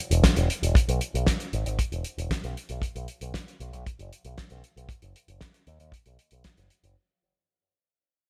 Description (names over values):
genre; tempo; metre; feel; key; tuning
italo disco; 116 BPM; 4/4; straight; B major; A4 = 440 Hz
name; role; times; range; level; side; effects
picked electric bass with an envelope filter; bass; 0.1-6.9 s; E1 to D#2; -30 LUFS; equal; tube saturation
damped 70s drum kit; drums; 0.1-6.9 s; hi-hat, snare drum; -30 LUFS; equal; gated reverb
kick drum; drums; 0.2-6.5 s; none; -26 LUFS; equal; none
room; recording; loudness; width
little or no reverb; none; -27 LUFS; mono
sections
0.0-7.0 A section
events
fade-out 0.0-7.0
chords
none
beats
0.24 | 0.76 1.27 1.79 2.31 | 2.82 3.34 3.86 4.38 | 4.89 5.41 5.93 6.45